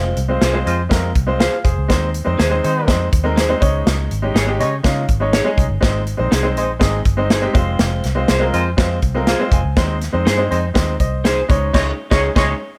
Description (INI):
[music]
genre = uptempo 1960s-style soul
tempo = 122 BPM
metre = 4/4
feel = straight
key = Ab major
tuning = A4 = 438 Hz
[part]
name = bright upright piano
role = accompaniment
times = 0.0-12.5 s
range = Ab3 to Ab5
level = -23 LUFS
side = equal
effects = none
[part]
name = vintage muted fingered electric bass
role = bass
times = 0.0-12.5 s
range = F1 to Eb3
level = -23 LUFS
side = equal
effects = none
[part]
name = natural country drum kit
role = drums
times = 0.2-12.5 s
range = crash cymbal, hi-hat, kick drum, snare drum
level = -20 LUFS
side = equal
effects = none
[part]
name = electric guitar through a small old amp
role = stabs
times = 0.4-12.5 s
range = Eb4 to Db5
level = -24 LUFS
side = equal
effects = tube saturation, analog chorus
[part]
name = dark horn section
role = second line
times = 0.7-12.5 s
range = Ab3 to Db5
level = -24 LUFS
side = equal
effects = none
[sound]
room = light reverb, small room reverb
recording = none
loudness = -17 LUFS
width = mono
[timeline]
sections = 0.0-12.8 A section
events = upright piano fill 9.0-9.8; band accent 11.7-12.8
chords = 0.0 Fm; 1.9 Ab/Eb; 3.6 Dbsus2; 5.8 Ab; 7.6 Fm; 9.8 Ab/Eb; 11.5 Dbsus2